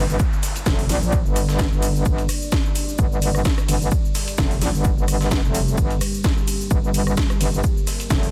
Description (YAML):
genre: bass house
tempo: 129 BPM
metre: 4/4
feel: swing 54% on 16ths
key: G minor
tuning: A4 = 443 Hz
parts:
  - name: deep dark ambient pad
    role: sustained chords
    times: 0.6-8.3 s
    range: G3 to D5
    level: -34 LUFS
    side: equal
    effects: chorus, built-in reverb, sidechain pumping
  - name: metallic wobble bass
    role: bass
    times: 0.0-8.3 s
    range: F1 to Bb1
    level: -23 LUFS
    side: equal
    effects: chorus, overdrive, sidechain pumping
  - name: downlifter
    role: sound effects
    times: 0.0-2.1 s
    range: none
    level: -41 LUFS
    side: equal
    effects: none
  - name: house drum kit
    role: drums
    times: 0.1-8.3 s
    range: hi-hat, ride cymbal, rim click, shaker, snare drum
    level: -30 LUFS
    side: equal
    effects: overdrive
  - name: breakbeat sampler-style drum kit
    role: drums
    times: 0.2-8.2 s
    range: hi-hat, shaker, snare drum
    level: -36 LUFS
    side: equal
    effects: high-pass filter on snare, high-pass filter on perc, high-pass filter on hats, high-pass filter on room
  - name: electronic kick drum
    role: drums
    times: 0.2-8.2 s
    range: none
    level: -24 LUFS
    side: equal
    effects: overdrive
room: little or no reverb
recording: dense, heavily limited modern master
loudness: -20 LUFS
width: mono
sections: 0.0-8.3 A section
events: none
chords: 0.0 Gm